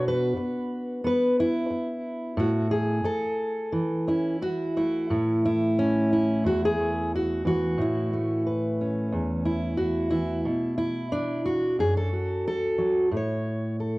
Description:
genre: folk, solo fingerstyle acoustic guitar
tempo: 90 BPM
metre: 4/4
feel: straight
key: A major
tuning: A4 = 442 Hz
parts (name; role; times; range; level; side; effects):
- fingerpicked steel-string acoustic guitar; solo; 0.0-14.0 s; E2 to C#5; -23 LUFS; equal; none
room: light reverb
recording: worn, warbling old tape, cassette tape, warbly pitch drift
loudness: -23 LUFS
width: side -21 dB against mid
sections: 0.0-5.1 A section; 5.1-14.0 B section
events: none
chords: 0.0 Bm; 2.4 A; 5.1 Aadd9; 10.5 Bm7; 13.1 F#m/A (rootless)

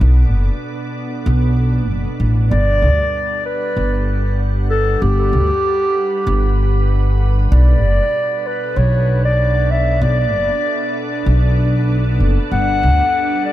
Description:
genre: ambient dub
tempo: 96 BPM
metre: 4/4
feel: swing 55% on 16ths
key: B minor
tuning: A4 = 440 Hz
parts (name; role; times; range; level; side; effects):
- soft additive organ-like pad; sustained chords; 0.0-13.5 s; B2 to F#5; -25 LUFS; right 2 dB; ensemble chorus, built-in reverb
- upright bass; bass; 0.0-13.0 s; F#1 to D2; -14 LUFS; equal; none
- dark clarinet; melody; 2.5-13.5 s; G4 to F#5; -18 LUFS; equal; dub echo
room: light reverb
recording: none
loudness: -14 LUFS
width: side -14 dB against mid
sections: 0.0-13.5 A section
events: none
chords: 0.0 Bm7; 2.5 Gmaj7; 7.5 Bm7; 12.5 Gmaj7

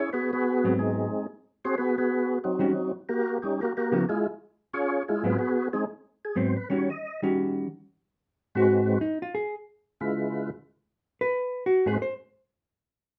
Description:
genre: jazz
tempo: 181 BPM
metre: 4/4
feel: swing 62% on 8ths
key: unclear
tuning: A4 = 444 Hz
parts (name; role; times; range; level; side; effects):
- percussive tonewheel organ; melody; 0.0-12.0 s; Ab2 to Eb5; -28 LUFS; equal; slow rotary speaker, overdrive, chorus vibrato
- hollow-body jazz guitar; accompaniment; 0.6-12.1 s; Ab2 to C5; -28 LUFS; equal; none
room: wet studio ambience, RT60 0.5 s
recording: none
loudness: -27 LUFS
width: mono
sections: 0.0-8.0 A section; 8.0-13.2 A section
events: tonewheel organ solo 0.0-8.0; hollow-body jazz guitar solo 8.0-13.2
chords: 0.1 Ab7#9; 2.7 Eb7#9; 4.0 Db7#9; 6.7 Eb7#9; 8.0 Ab7#9; 9.3 Db7#9; 10.7 Abm7 (rootless)

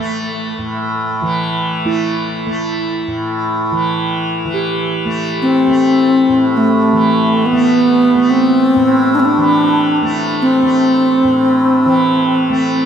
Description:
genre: world meditative, free-time meditation music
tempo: free time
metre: none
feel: none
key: A minor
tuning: A4 = 442 Hz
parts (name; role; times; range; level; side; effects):
- tanpura; drone; 0.0-12.9 s; A2 to A3; -18 LUFS; right 1 dB; none
- bronze singing bowl; texture; 1.9-12.1 s; E4 to G4; -24 LUFS; right 4 dB; none
- breathy bright bass flute; melody; 5.4-12.9 s; A3 to D4; -12 LUFS; equal; ping-pong delay
room: wet cathedral reverb, RT60 5.4 s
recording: in a vast, echoing space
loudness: -12 LUFS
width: side -8 dB against mid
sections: 0.0-4.4 A section; 4.4-12.9 A section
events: none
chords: none

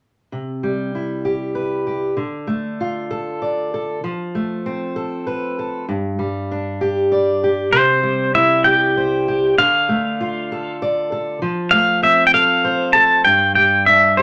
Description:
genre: acoustic folk duo or small band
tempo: 65 BPM (dotted quarters)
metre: 6/8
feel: straight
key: C major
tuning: A4 = 441 Hz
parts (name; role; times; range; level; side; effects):
- fingerpicked steel-string acoustic guitar; accompaniment; 0.3-14.2 s; G2 to D5; -22 LUFS; equal; none
- pedal steel guitar; melody; 7.7-14.2 s; C5 to A5; -16 LUFS; equal; none
room: wet studio ambience, RT60 0.5 s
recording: none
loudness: -18 LUFS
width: mono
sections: 0.3-7.7 A section; 7.7-14.2 B section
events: none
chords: 0.3 C; 2.2 Dm; 4.0 F; 5.9 G5; 7.7 C; 9.6 Dm; 11.4 F; 13.3 G5

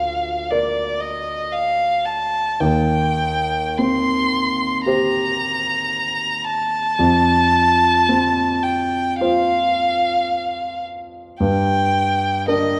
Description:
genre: classical, romantic duo for violin and grand piano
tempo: 48-58 BPM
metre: 4/4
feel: rubato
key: unclear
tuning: A4 = 440 Hz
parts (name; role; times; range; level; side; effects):
- rich violin; melody; 0.0-12.8 s; D5 to C6; -21 LUFS; equal; none
- warm grand piano; accompaniment; 0.0-12.8 s; D2 to D5; -23 LUFS; equal; none
room: moderate scoring stage reverb, RT60 2.0 s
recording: dark, warm production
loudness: -19 LUFS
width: mono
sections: 0.0-12.8 A section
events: none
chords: 0.0 Bb/D; 2.6 Cm/Eb; 7.0 F; 11.4 Gm

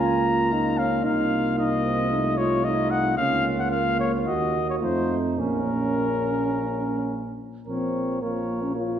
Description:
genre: classical, brass quintet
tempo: 103-114 BPM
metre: 4/4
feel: rubato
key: Bb minor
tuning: A4 = 440 Hz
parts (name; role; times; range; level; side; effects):
- warm trumpet; melody; 0.0-9.0 s; Bb4 to Bb5; -27 LUFS; left 4 dB; none
- mellow flugelhorn; second line; 0.0-9.0 s; Db4 to Bb4; -30 LUFS; right 5 dB; none
- mellow French horn; accompaniment; 0.0-9.0 s; A3 to F4; -28 LUFS; left 1 dB; none
- mellow trombone; accompaniment; 0.0-9.0 s; F3 to Gb4; -29 LUFS; right 2 dB; none
- mellow tuba; bass; 0.0-9.0 s; Bb1 to F2; -29 LUFS; right 2 dB; none
room: wet concert hall reverb, RT60 1.9 s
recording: recorded in a church or concert hall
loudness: -22 LUFS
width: side -9 dB against mid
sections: 0.0-7.7 A section; 7.7-9.0 A section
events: none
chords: 0.0 Bbm/Db; 1.0 F7/C; 3.2 Bbm/Db; 4.3 Ebm; 4.8 F7; 5.4 Bbm

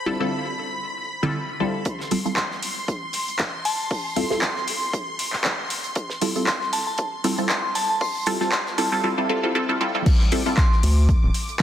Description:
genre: deep house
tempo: 117 BPM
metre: 4/4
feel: swing 55% on 16ths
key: unclear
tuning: A4 = 441 Hz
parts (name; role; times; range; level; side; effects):
- filtered dub chord stab; stabs; 0.0-11.6 s; D3 to A4; -24 LUFS; equal; phaser, sidechain pumping, tape echo
- string machine, violins; texture; 0.0-11.6 s; B5 to D6; -33 LUFS; equal; ensemble chorus
- damped 70s drum kit; drums; 1.9-11.6 s; hi-hat, snare drum; -35 LUFS; right 4 dB; sidechain pumping on hats, high-pass filter on hats, high-pass filter on snare, high-pass filter on room
- electronic kick drum; drums; 1.9-11.6 s; none; -22 LUFS; equal; overdrive, high-pass filter on kick
- deep house drum kit; drums; 2.1-11.6 s; crash cymbal, handclaps, hi-hat; -26 LUFS; left 1 dB; overdrive, low-pass filter on hats, low-pass filter on snare, low-pass filter on cymbals
- glassy synth bell; melody; 2.4-10.8 s; A5 to C6; -28 LUFS; equal; chorus, tape echo
- round analog bass; bass; 10.8-11.3 s; D1 to D2; -17 LUFS; equal; sidechain pumping
room: moderate lush hall reverb, RT60 2.2 s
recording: dense, heavily limited modern master, vinyl crackle, high-pass filter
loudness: -20 LUFS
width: side -11 dB against mid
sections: 0.0-1.9 A section; 1.9-10.1 B section; 10.1-11.6 C section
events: build-up 1.9-10.1; filter sweep on synth stab 1.9-10.1; drop 10.1-11.6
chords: 0.0 Dm11; 1.9 G13sus4; 10.1 Dm11

